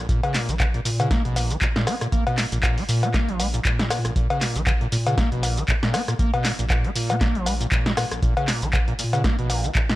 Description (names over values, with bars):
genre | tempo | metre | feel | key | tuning
acid house | 118 BPM | 4/4 | swing 56% on 16ths | Bb phrygian | A4 = 436 Hz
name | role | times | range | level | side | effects
overdriven acid bass | riff | 0.0-10.0 s | Bb1 to Db4 | -26 LUFS | equal | wide subtle chorus, sidechain pumping, digital delay
round analog bass | bass | 0.1-10.0 s | Bb1 to Bb2 | -27 LUFS | equal | sidechain pumping
electronic kick drum | drums | 0.1-9.9 s | none | -23 LUFS | equal | none
punchy analog drum machine | drums | 0.1-10.0 s | cowbell, handclaps, hi-hat, rim click, shaker, snare drum | -25 LUFS | left 1 dB | none
room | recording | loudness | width
little or no reverb | none | -20 LUFS | side -16 dB against mid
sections
0.0-10.0 A section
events
none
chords
none